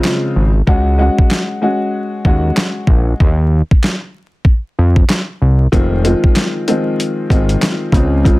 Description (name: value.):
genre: hip hop, boom-bap hip-hop.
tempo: 95 BPM.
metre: 4/4.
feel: swing 60% on 16ths.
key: F minor.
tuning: A4 = 441 Hz.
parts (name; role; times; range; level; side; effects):
dark upright piano; accompaniment; 0.0-8.4 s; Db3 to Gb4; -16 LUFS; left 1 dB; cassette tape, high-pass filter, low-pass filter.
boom bap sampler-style drum kit; drums; 0.0-8.4 s; handclaps, hi-hat, kick drum, snare drum; -12 LUFS; equal; none.
fat analog bass; bass; 0.4-8.4 s; F1 to F2; -13 LUFS; equal; none.
room: little or no reverb.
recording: dense, heavily limited modern master, vinyl crackle.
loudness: -12 LUFS.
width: side -20 dB against mid.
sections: 0.0-8.4 A section.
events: break 0.0-5.7.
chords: 0.0 Dbmaj7; 0.7 Gbsus2/Db; 3.2 Ebsus2; 5.7 Fm7.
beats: 0.04 | 0.67 1.30 1.94 2.57 | 3.20 3.83 4.46 5.09 | 5.73 6.36 6.99 7.62 | 8.25.